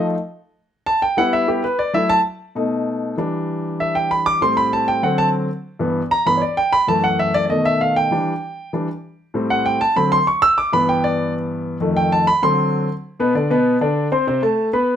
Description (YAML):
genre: jazz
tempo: 194 BPM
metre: 4/4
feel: straight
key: G major, E minor from 3.2 s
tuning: A4 = 441 Hz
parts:
  - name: warm concert grand piano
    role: solo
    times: 0.0-15.0 s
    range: F2 to E6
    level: -16 LUFS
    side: equal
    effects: none
room: moderate studio reverb, RT60 0.7 s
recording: none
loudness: -16 LUFS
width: side -9 dB against mid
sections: 0.0-3.2 A section; 3.2-13.0 A section; 13.0-15.0 B section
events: grand piano solo 0.0-13.0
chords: 0.0 F7; 0.7 G6; 1.9 F#m7; 2.6 B7; 3.2 Em7; 4.4 Am7; 5.0 D7; 5.6 G6; 6.9 F#m7; 7.5 B7; 8.1 Em7; 9.3 Am7; 10.0 D7; 10.6 G6; 11.8 F7; 12.4 D7; 13.0 Bm; 14.3 Amadd9/C